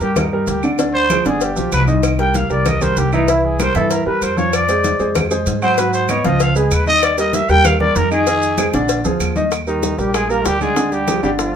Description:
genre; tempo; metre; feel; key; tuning
Afro-Cuban jazz; 192 BPM; 4/4; straight; Eb major; A4 = 440 Hz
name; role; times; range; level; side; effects
growling trumpet; melody; 0.0-11.6 s; Eb4 to G5; -18 LUFS; equal; none
warm baby grand piano; accompaniment; 0.0-11.5 s; D3 to Gb5; -18 LUFS; right 1 dB; none
upright bass; bass; 0.0-11.5 s; G1 to Ab2; -21 LUFS; equal; none
congas; percussion; 0.0-11.5 s; none; -25 LUFS; left 2 dB; none
maracas; percussion; 0.0-11.5 s; none; -30 LUFS; right 6 dB; none
claves; percussion; 0.2-11.2 s; none; -28 LUFS; right 5 dB; none
cowbell and bongos; percussion; 0.2-11.5 s; none; -24 LUFS; left 7 dB; none
bright trombone; second line; 9.7-11.6 s; Eb3 to Bb3; -23 LUFS; right 2 dB; none
room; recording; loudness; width
moderate club reverb, RT60 0.6 s; minimal, uncompressed stereo recording; -14 LUFS; side -8 dB against mid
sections
0.0-9.5 A section; 9.5-11.6 B section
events
trumpet solo 0.0-9.5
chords
0.0 Ebmaj7; 0.8 Dm7b5; 1.4 G7; 2.0 Cm7; 3.3 C7; 4.5 Fm; 5.8 Abm7; 6.4 Db9; 7.0 Eb; 8.3 Fm7; 8.9 Bb7; 9.5 Ebmaj7; 10.8 Ddim

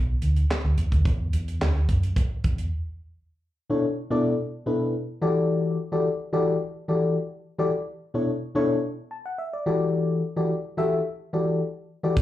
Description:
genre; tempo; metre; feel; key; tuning
early-eighties boogie funk; 108 BPM; 4/4; straight; B minor; A4 = 440 Hz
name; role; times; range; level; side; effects
vintage muted fingered electric bass; bass; 0.0-2.7, 12.2 s; B1 to F#2; -22 LUFS; equal; none
tight funk drum kit; drums; 0.2-2.7, 12.2 s; handclaps, hi-hat, kick drum, snare drum; -26 LUFS; right 1 dB; none
mellow FM electric piano; accompaniment; 3.7-12.2 s; B2 to A5; -23 LUFS; left 2 dB; chorus, slapback echo
room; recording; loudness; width
light reverb; live gig heard through the venue's PA, club reverb; -23 LUFS; side -13 dB against mid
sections
0.0-3.3 A section; 3.3-12.2 B section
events
break 2.7-3.3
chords
0.0 Bm; 0.8 N.C.; 3.3 Bm11; 5.2 Em11; 7.7 Bm11; 9.7 Em11

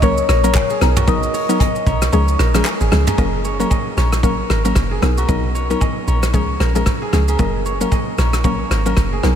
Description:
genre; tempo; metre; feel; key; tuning
afrobeats; 114 BPM; 4/4; swing 58% on 16ths; F# major; A4 = 442 Hz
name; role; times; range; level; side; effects
soft struck synth lead; melody; 0.0-2.7 s; A#4 to D#5; -23 LUFS; left 2 dB; chorus, phaser, tape echo
mallet-like synth pluck; accompaniment; 0.0-9.4 s; E#3 to A#4; -21 LUFS; left 2 dB; chorus
kora; riff; 0.0-9.4 s; F#4 to D#5; -25 LUFS; right 3 dB; tape echo
deep log drum bass; bass; 0.0-9.4 s; F#1 to C#2; -18 LUFS; equal; none
soft brush drum kit; drums; 0.0-9.4 s; handclaps, hi-hat, kick drum, rim click, shaker, toms; -20 LUFS; equal; none
agogo bells and woodblock; percussion; 0.0-9.0 s; none; -30 LUFS; left 6 dB; none
room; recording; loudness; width
moderate huge ambient reverb, RT60 7.3 s; dreamy mix soaked in reverb; -14 LUFS; side -9 dB against mid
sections
0.0-3.2 A section; 3.2-9.4 B section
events
kick muted 2.1-3.2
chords
0.0 F#; 0.8 Bmaj7; 2.1 C#; 3.2 F#; 5.0 Bmaj7; 6.3 C#; 7.4 F#

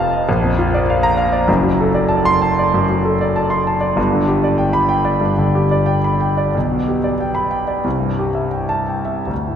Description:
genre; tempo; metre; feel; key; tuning
classical, romantic character piece for solo piano; 74-100 BPM; 4/4; rubato; G major; A4 = 440 Hz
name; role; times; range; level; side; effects
warm concert grand piano; solo; 0.0-9.6 s; F1 to C6; -14 LUFS; equal; none
room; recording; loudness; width
wet cathedral reverb, RT60 4.5 s; recorded in a church or concert hall; -14 LUFS; side -8 dB against mid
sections
0.0-9.6 A section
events
none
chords
0.3 Bb; 1.5 D7/F#; 4.0 G; 6.5 G/B; 7.8 Am7/C

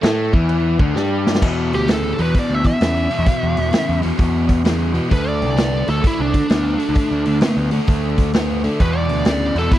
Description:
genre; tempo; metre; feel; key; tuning
blues rock power trio and southern rock; 130 BPM; 4/4; swing 65% on 8ths; E minor; A4 = 440 Hz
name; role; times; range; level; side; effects
biting overdriven guitar; riff; 0.0-9.8 s; E2 to B3; -21 LUFS; left 1 dB; none
growling picked electric bass; bass; 0.0-9.7 s; C2 to E3; -20 LUFS; equal; overdrive
vintage drum kit; drums; 0.0-9.8 s; crash cymbal, hi-hat, kick drum, snare drum; -18 LUFS; equal; none
bluesy overdriven lead guitar; melody; 1.7-9.8 s; D4 to E5; -22 LUFS; right 2 dB; distortion, tape echo
room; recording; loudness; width
little or no reverb; dry, close 1970s-style studio recording, vinyl crackle; -15 LUFS; side -13 dB against mid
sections
0.0-1.4 A section; 1.4-9.8 B section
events
drum fill 1.0-1.4; lead electric guitar solo 1.4-9.8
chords
0.0 D5; 1.4 E5; 5.1 D5; 8.8 E5

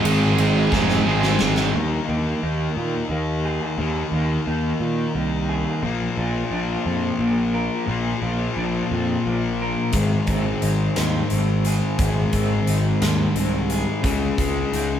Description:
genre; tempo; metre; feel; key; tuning
quiet-loud alternative rock; 58 BPM (dotted quarters); 6/8; straight; unclear; A4 = 441 Hz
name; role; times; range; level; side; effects
scooped high-gain guitar; riff; 0.0-1.7 s; Ab2 to Ab3; -24 LUFS; right 2 dB; distortion
thick fuzz guitar; riff; 0.0-15.0 s; Ab2 to Ab4; -23 LUFS; left 3 dB; distortion
thick fuzz guitar; riff; 0.0-1.7 s; Ab3 to Ab4; -24 LUFS; right 6 dB; distortion
fuzz picked electric bass; bass; 0.0-15.0 s; F1 to Bb2; -24 LUFS; equal; overdrive
big rock drum kit; drums; 0.1-1.7, 9.9-14.9 s; hi-hat, kick drum, ride cymbal, snare drum; -26 LUFS; equal; none
electric guitar through a small old amp; arpeggios; 1.7-15.0 s; Ab2 to Bb4; -29 LUFS; right 3 dB; tremolo
room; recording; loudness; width
light reverb; band playing live in one room; -19 LUFS; side -9 dB against mid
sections
0.0-1.7 A section; 1.7-15.0 B section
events
drum fill 0.7-1.7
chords
0.0 Ab; 1.7 Ebsus4; 5.8 Bb; 9.9 Ab; 14.0 Dbsus2

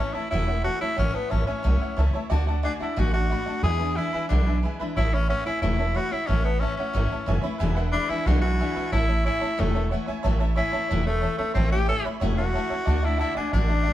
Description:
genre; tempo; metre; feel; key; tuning
rockabilly; 181 BPM; 4/4; straight; A major; A4 = 440 Hz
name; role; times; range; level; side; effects
raspy tenor saxophone; melody; 0.0-13.9 s; A3 to A4; -27 LUFS; left 2 dB; none
honky-tonk upright piano; accompaniment; 0.0-13.9 s; B4 to B5; -32 LUFS; right 2 dB; none
picked steel-string acoustic guitar; accompaniment; 0.0-13.9 s; E2 to F#4; -32 LUFS; left 4 dB; none
upright bass; bass; 0.1-13.9 s; E1 to E2; -24 LUFS; right 1 dB; none
room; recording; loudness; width
moderate stone room reverb, RT60 1.1 s; band playing live in one room; -22 LUFS; side -13 dB against mid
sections
0.0-10.2 A section; 10.2-13.9 B section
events
tenor saxophone solo 10.2-13.9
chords
0.0 A; 2.3 D; 3.6 E7; 5.0 A; 7.6 E7; 8.9 A; 12.9 D

